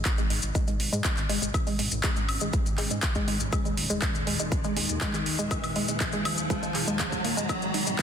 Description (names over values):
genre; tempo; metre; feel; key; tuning
progressive house; 121 BPM; 4/4; straight; G# minor; A4 = 440 Hz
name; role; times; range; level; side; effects
warm analog pad; sustained chords; 0.0-8.0 s; A#2 to D#4; -38 LUFS; equal; chorus, sidechain pumping
fat analog bass; bass; 0.0-8.0 s; D#1 to G#2; -35 LUFS; equal; sidechain pumping
riser; sound effects; 0.0-8.0 s; none; -36 LUFS; right 1 dB; none
deep house drum kit; drums; 0.1-8.0 s; handclaps, hi-hat, woodblock; -30 LUFS; equal; overdrive, sidechain pumping on hats, high-pass filter on hats, sidechain pumping on perc, high-pass filter on perc, high-pass filter on snare
electronic kick drum; drums; 0.1-8.0 s; none; -29 LUFS; equal; none
maracas; percussion; 0.1-8.0 s; none; -36 LUFS; left 6 dB; none
wide unison pluck; arpeggios; 0.2-7.9 s; G#3 to G#4; -32 LUFS; equal; sidechain pumping, tape echo
room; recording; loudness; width
moderate lush hall reverb, RT60 2.2 s; dense, heavily limited modern master, high-pass filter; -25 LUFS; side -8 dB against mid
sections
0.0-8.0 A section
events
build-up 0.0-8.0; riser 0.0-8.0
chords
0.0 G#m; 3.5 D#sus4; 7.5 G#m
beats
0.06 0.55 1.05 | 1.54 2.04 2.53 3.03 | 3.53 4.02 4.52 5.01 | 5.51 6.00 6.50 7.00 | 7.49 7.99